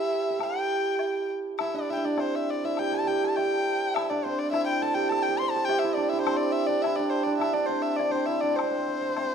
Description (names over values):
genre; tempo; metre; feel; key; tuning
chinese traditional, Chinese chamber ensemble; 103 BPM; 4/4; straight; C gong mode; A4 = 441 Hz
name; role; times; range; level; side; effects
warm erhu; melody; 0.0-9.3 s; C5 to C6; -28 LUFS; left 3 dB; none
hammered dulcimer; second line; 0.0-9.3 s; A3 to C5; -26 LUFS; right 3 dB; none
woodblock; percussion; 0.4-9.3 s; none; -35 LUFS; left 10 dB; none
room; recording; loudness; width
moderate scoring stage reverb, RT60 1.5 s; minimal, uncompressed stereo recording; -24 LUFS; side -7 dB against mid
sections
0.0-9.3 A section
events
none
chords
none